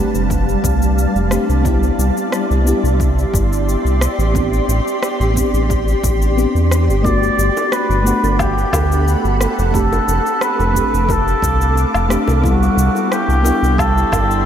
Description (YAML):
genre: sunset chillout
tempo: 89 BPM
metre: 4/4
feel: straight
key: unclear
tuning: A4 = 440 Hz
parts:
  - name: mellow FM electric piano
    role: accompaniment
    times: 0.0-14.5 s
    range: G3 to F#5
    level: -20 LUFS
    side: moving between left 3 dB and right 5 dB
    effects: chorus, auto-pan, diffuse ambient delay
  - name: shimmering ambient pad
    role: sustained chords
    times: 0.0-14.5 s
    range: G3 to D6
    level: -22 LUFS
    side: equal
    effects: chorus, built-in reverb
  - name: round analog bass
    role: bass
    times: 0.0-14.5 s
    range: F1 to E2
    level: -16 LUFS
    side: equal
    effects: none
  - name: electronic cabasa, rim click and woodblock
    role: drums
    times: 0.1-14.4 s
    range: none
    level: -26 LUFS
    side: left 1 dB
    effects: overdrive, small room ambience
  - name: electronic kick drum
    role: drums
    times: 0.3-14.3 s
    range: none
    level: -22 LUFS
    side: equal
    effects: overdrive, small room ambience
  - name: trumpet with cup mute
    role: melody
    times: 7.0-14.5 s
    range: F#4 to D5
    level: -19 LUFS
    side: equal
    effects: diffuse ambient delay
  - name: bongos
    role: percussion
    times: 7.0-14.3 s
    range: none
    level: -30 LUFS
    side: right 2 dB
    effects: none
room: moderate huge ambient reverb, RT60 7.9 s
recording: dreamy mix soaked in reverb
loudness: -13 LUFS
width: side -9 dB against mid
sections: 0.0-14.5 A section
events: none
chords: 0.0 F69; 1.7 Am11; 7.0 Gmaj9; 9.7 F69; 12.4 Am11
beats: 0.30 0.98 | 1.65 2.33 3.00 3.67 | 4.35 5.02 5.70 6.37 | 7.04 7.72 8.39 9.07 | 9.74 10.42 11.09 11.76 | 12.44 13.11 13.79